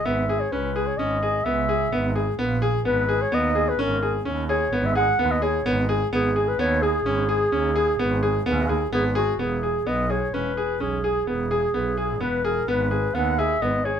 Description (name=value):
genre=contemporary instrumental, chamber music in an uneven meter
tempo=128 BPM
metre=7/4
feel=straight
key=G# minor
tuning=A4 = 438 Hz
part: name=dark clarinet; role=melody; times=0.0-14.0 s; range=F#4 to F#5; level=-25 LUFS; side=equal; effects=none
part: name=bright concert grand piano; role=arpeggios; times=0.1-14.0 s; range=B3 to G#4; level=-24 LUFS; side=left 2 dB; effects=none
part: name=bright double bass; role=bass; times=0.1-13.8 s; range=E1 to D#2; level=-27 LUFS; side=right 2 dB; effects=none
part: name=handpan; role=texture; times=3.3-4.4 s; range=B3 to D#5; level=-34 LUFS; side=right 4 dB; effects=none
room=light reverb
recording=minimal, uncompressed stereo recording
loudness=-20 LUFS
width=side -8 dB against mid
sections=0.0-9.4 A section; 9.4-14.0 B section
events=none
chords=0.0 C#m7; 2.9 G#m; 9.4 E; 12.7 G#m